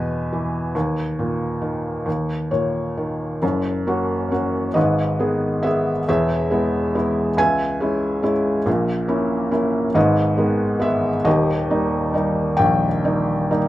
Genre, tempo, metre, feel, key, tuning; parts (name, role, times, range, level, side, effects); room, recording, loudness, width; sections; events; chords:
classical, lyrical solo piano; 46 BPM (dotted quarters); 6/8; rubato; A4 = 440 Hz
felt-muted upright piano; solo; 0.0-13.7 s; D#1 to G#5; -18 LUFS; equal
light reverb; minimal, uncompressed stereo recording; -18 LUFS; side -15 dB against mid
0.0-3.4 A section; 3.4-13.7 B section
felt piano fill 2.1-3.4
0.0 E; 0.7 D#5; 3.4 F#; 4.8 G#m; 6.1 E; 7.4 C#m; 8.7 A#dim; 10.0 G#m; 11.3 D#